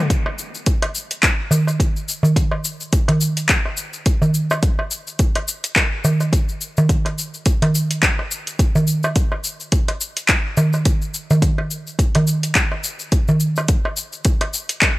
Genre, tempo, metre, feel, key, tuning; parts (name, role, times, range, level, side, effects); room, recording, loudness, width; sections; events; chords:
downtempo; 106 BPM; 4/4; swing 57% on 16ths
deep house drum kit; drums; 0.1-14.9 s; cabasa, handclaps, hi-hat; -20 LUFS; left 1 dB; overdrive, small room ambience
electronic kick drum; drums; 0.1-14.9 s; -18 LUFS; equal; overdrive, small room ambience
darbuka; percussion; 0.3-14.5 s; -18 LUFS; right 1 dB
little or no reverb; dry, gritty hardware recording; -16 LUFS; side -19 dB against mid
0.1-15.0 A section